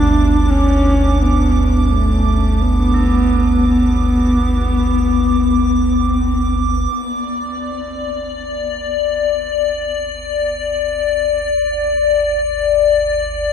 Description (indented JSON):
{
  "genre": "dark ambient drone",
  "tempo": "free time",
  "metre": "none",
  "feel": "none",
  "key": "unclear",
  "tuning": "A4 = 440 Hz",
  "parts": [
    { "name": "dark horsehead fiddle", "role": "melody", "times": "0.0-6.4 s", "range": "A3 to D4", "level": "-17 LUFS", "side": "left 1 dB", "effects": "tape echo" },
    { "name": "tubular bells", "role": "arpeggios", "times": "0.0-9.4 s", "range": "E4 to A4", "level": "-39 LUFS", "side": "right 1 dB", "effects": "none" },
    { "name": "deep rumbling drone", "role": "drone", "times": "0.0-13.5 s", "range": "G1 to D2", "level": "-18 LUFS", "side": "right 1 dB", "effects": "built-in reverb, wide subtle chorus" },
    { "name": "icy glass pad", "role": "texture", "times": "0.0-13.5 s", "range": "D5 to D6", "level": "-19 LUFS", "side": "left 4 dB", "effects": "chorus, built-in reverb" }
  ],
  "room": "wet huge ambient reverb, RT60 6.9 s",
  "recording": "none",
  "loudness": "-14 LUFS",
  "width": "side -8 dB against mid",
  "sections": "0.0-6.9 A section; 6.9-13.5 B section",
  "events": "fade-in on synth drone 6.9-13.5",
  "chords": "0.0 Em; 6.9 Gsus2",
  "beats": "free time"
}